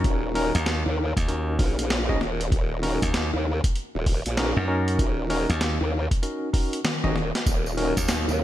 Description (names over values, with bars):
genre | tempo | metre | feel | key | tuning
glitch hop | 97 BPM | 4/4 | swing 63% on 16ths | Eb minor pentatonic | A4 = 440 Hz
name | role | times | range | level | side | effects
tine electric piano | stabs | 0.0-8.0 s | Db4 to Eb5 | -29 LUFS | left 1 dB | medium tremolo, sidechain pumping, ping-pong delay
formant-sweep wobble bass | bass | 0.0-8.4 s | Eb1 to Eb2 | -26 LUFS | equal | chorus, overdrive
glassy slap bass | bass | 0.0-8.2 s | Eb2 to Gb2 | -25 LUFS | equal | none
boom bap sampler-style drum kit | drums | 0.0-8.2 s | hi-hat, snare drum, toms | -29 LUFS | equal | gated reverb
electronic kick drum | drums | 0.0-8.1 s | none | -24 LUFS | equal | none
dark analog pad | sustained chords | 7.7-8.4 s | Bb3 to Db5 | -31 LUFS | right 1 dB | chorus, sidechain pumping
tambourine | percussion | 7.5-8.4 s | none | -35 LUFS | right 4 dB | none
room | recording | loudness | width
light reverb | bright 1980s-style digital production | -22 LUFS | side -13 dB against mid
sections
0.0-8.4 A section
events
drum fill 6.8-7.5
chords
0.0 Ebm7